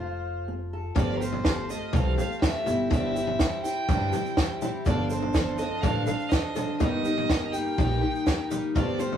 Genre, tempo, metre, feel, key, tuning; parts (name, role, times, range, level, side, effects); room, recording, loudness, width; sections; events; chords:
indie folk with a building arrangement; 123 BPM; 4/4; straight; A4 = 440 Hz
warm fiddle; melody; 0.0-9.2 s; Bb4 to G5; -32 LUFS; right 2 dB
fingerpicked steel-string acoustic guitar; accompaniment; 0.0-0.9 s; C3 to A4; -35 LUFS; left 4 dB
upright bass; bass; 0.0-9.2 s; F1 to G2; -31 LUFS; right 1 dB
picked twelve-string acoustic guitar; accompaniment; 0.9-9.2 s; G2 to A4; -29 LUFS; left 2 dB
compact cocktail drum kit; drums; 1.0-9.2 s; kick drum, snare drum, toms; -26 LUFS; equal
egg shaker; percussion; 1.0-9.1 s; -48 LUFS; right 5 dB
moderate studio reverb, RT60 0.6 s; rough rehearsal-room recording, warm saturation, small room ambience; -24 LUFS; side -9 dB against mid
1.0-9.2 A section
0.0 F; 1.0 Fadd9/G; 2.7 Cadd9/G; 4.9 Dm7/G; 6.8 Eb/G